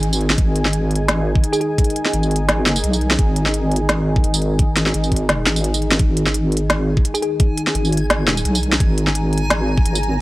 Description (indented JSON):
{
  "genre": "half-time drum and bass",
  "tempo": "171 BPM",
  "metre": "4/4",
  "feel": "swing 55% on 16ths, half-time",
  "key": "unclear",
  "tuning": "A4 = 440 Hz",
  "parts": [
    { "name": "dark analog pad", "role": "sustained chords", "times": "0.0-10.2 s", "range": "D#3 to A#5", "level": "-24 LUFS", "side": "equal", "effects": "chorus, sidechain pumping" },
    { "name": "deep soft wobble bass", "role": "bass", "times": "0.0-10.2 s", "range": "G#1 to B1", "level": "-19 LUFS", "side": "equal", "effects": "chorus, tube saturation" },
    { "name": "organic electronic drum kit", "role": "drums", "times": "0.0-10.1 s", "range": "hi-hat, snare drum, tambourine", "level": "-19 LUFS", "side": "equal", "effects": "none" },
    { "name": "electronic kick drum", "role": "drums", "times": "0.4-9.8 s", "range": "none", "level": "-16 LUFS", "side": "equal", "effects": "none" },
    { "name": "thumb-piano-like synth pluck", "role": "melody", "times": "1.5-1.7, 7.1-7.3 s", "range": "G#4", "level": "-25 LUFS", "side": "left 1 dB", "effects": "chorus, tape echo" },
    { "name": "backwards swelling texture", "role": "texture", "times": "7.1-10.2 s", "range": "G#5", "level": "-30 LUFS", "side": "right 1 dB", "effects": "built-in reverb" }
  ],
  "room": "digital ambience",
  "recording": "dry, gritty hardware recording",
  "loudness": "-15 LUFS",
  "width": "side -18 dB against mid",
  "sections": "0.0-10.2 A section",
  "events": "none",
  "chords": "0.0 G#5"
}